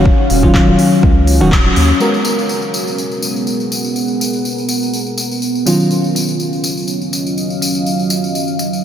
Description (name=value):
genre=deep house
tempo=123 BPM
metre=4/4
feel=swing 55% on 16ths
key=G# minor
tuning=A4 = 440 Hz
part: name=mellow FM electric piano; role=stabs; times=0.0-8.8 s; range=D#3 to A#4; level=-17 LUFS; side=equal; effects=chorus, sidechain pumping, diffuse ambient delay
part: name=round analog bass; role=bass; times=0.0-1.9 s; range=D#1 to D#2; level=-14 LUFS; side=equal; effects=sidechain pumping
part: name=deep dark ambient pad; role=texture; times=0.0-8.8 s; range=F#3 to F#5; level=-18 LUFS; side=equal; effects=chorus, built-in reverb, sidechain pumping
part: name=electronic kick drum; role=drums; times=0.1-1.6 s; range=none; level=-12 LUFS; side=equal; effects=small room ambience
part: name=deep house drum kit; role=drums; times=0.3-8.7 s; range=handclaps, hi-hat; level=-21 LUFS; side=equal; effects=low-pass filter on hats, small room ambience, low-pass filter on snare
part: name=tambourine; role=percussion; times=2.0-8.8 s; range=none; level=-21 LUFS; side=left 2 dB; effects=none
room=moderate huge ambient reverb, RT60 4.2 s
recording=dreamy mix soaked in reverb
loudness=-12 LUFS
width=side -9 dB against mid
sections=0.0-2.0 A section; 2.0-8.8 B section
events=band accent 1.5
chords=0.0 D#m9; 2.0 G#m9; 5.7 D#m9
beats=| 0.06 0.54 1.03 1.52 | 2.01 2.50 2.98 3.47 | 3.96 4.45 4.93 5.42 | 5.91 6.40 6.88 7.37 | 7.86 8.35 8.84